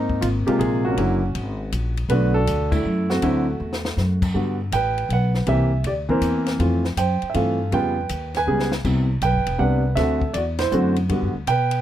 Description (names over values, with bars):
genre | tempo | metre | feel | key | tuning
jazz piano trio | 160 BPM | 3/4 | swing 66% on 8ths | G major | A4 = 439 Hz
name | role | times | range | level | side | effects
warm grand piano | melody | 0.0-11.8 s | C3 to G#5 | -22 LUFS | right 1 dB | none
upright bass | bass | 0.0-11.8 s | E1 to B2 | -23 LUFS | equal | none
compact cocktail drum kit | drums | 0.1-11.8 s | crash cymbal, hi-hat, kick drum, ride cymbal, snare drum | -30 LUFS | left 2 dB | none
room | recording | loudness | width
light reverb | none | -19 LUFS | side -11 dB against mid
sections
0.0-4.3 A section; 4.3-11.8 B section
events
band accent 2.7, 10.5; drum fill 3.6-4.0, 8.5-8.8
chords
0.0 Ab69; 1.0 F#; 2.1 Bm7; 3.2 Dadd9; 4.3 Gmaj7; 5.5 C7; 6.6 Fmaj7; 7.7 C#7#11; 8.8 Cmaj7(no3); 10.0 D7; 11.1 Gmaj7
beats
0.22 0.60 | 0.97 1.35 1.72 | 2.10 2.47 2.85 | 3.22 3.59 3.97 | 4.34 4.72 5.09 | 5.47 5.84 6.22 | 6.59 6.97 7.34 | 7.72 8.09 8.47 | 8.84 9.22 9.59 | 9.97 10.34 10.72 | 11.09 11.47